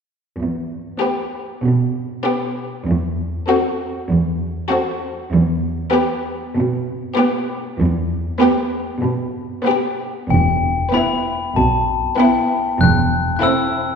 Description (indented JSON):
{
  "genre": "cinematic, playful, whimsical film cue",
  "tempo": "96 BPM",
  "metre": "4/4",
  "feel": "straight",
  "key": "E minor",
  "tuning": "A4 = 442 Hz",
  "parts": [
    { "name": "rich studio cello section", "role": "bass", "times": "0.4-13.3 s", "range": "E2 to B2", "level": "-20 LUFS", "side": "right 2 dB", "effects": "none" },
    { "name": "rich studio violin section", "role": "melody", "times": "1.0-13.9 s", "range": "A4 to B4", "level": "-28 LUFS", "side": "left 4 dB", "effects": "none" },
    { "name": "rich studio violin section", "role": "second line", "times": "1.0-13.9 s", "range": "E4 to G4", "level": "-23 LUFS", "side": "left 3 dB", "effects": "none" },
    { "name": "rich studio viola section", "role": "accompaniment", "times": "1.0-13.9 s", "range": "B3 to C4", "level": "-21 LUFS", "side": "right 2 dB", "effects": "none" },
    { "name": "glockenspiel with soft plastic mallets", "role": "melody", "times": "10.3-14.0 s", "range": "G5 to F#6", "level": "-19 LUFS", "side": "left 5 dB", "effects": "none" },
    { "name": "warm studio double bass section", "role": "bass", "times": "10.3-13.3 s", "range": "E1 to B1", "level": "-22 LUFS", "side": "right 3 dB", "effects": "none" }
  ],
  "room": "wet scoring stage reverb, RT60 1.9 s",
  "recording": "heard from further back in the room",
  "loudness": "-17 LUFS",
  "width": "side -6 dB against mid",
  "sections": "0.4-10.3 A section; 10.3-14.0 B section",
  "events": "none",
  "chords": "0.4 Em; 2.9 F#m7b5/E; 5.3 Em; 12.8 Am/E"
}